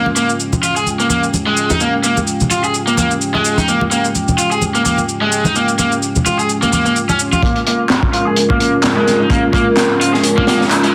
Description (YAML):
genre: breakbeat, breaks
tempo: 128 BPM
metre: 4/4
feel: swing 55% on 16ths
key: Bb dorian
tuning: A4 = 444 Hz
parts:
  - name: dark analog pad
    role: sustained chords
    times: 0.0-10.9 s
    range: Ab3 to G5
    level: -20 LUFS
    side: equal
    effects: chorus, vintage 12-bit sampler grit, sidechain pumping
  - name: overdriven electric guitar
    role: riff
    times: 0.0-10.9 s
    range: Ab3 to Ab4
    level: -18 LUFS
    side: equal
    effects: low-pass filter, dub echo
  - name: congas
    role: percussion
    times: 0.1-7.4 s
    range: none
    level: -22 LUFS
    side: equal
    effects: none
  - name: electronic shaker and handclaps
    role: drums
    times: 0.2-10.8 s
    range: none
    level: -23 LUFS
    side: equal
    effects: none
  - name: crunchy breakbeat drum kit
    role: drums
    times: 7.4-10.9 s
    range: hi-hat, kick drum, snare drum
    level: -19 LUFS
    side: equal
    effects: low-pass filter on kick, low-pass filter on hats, low-pass filter on snare, low-pass filter on room
  - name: riser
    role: sound effects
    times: 9.4-10.9 s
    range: none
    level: -29 LUFS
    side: equal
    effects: none
room: moderate plate reverb, RT60 1.5 s, small room ambience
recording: dense, heavily limited modern master, vinyl crackle, high-pass filter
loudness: -15 LUFS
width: mono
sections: 0.0-7.4 A section; 7.4-10.9 B section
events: filter sweep on analog synth pad 0.0-7.4; build-up 7.4-10.9; filter sweep on drum 7.4-10.9; filter sweep on overdriven electric guitar 7.4-10.9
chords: 0.0 Bbm7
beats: 0.40 0.87 1.34 | 1.81 2.28 2.75 3.21 | 3.68 4.15 4.62 5.09 | 5.56 6.03 6.50 6.96 | 7.43 7.90 8.37 8.84 | 9.31 9.78 10.24 10.71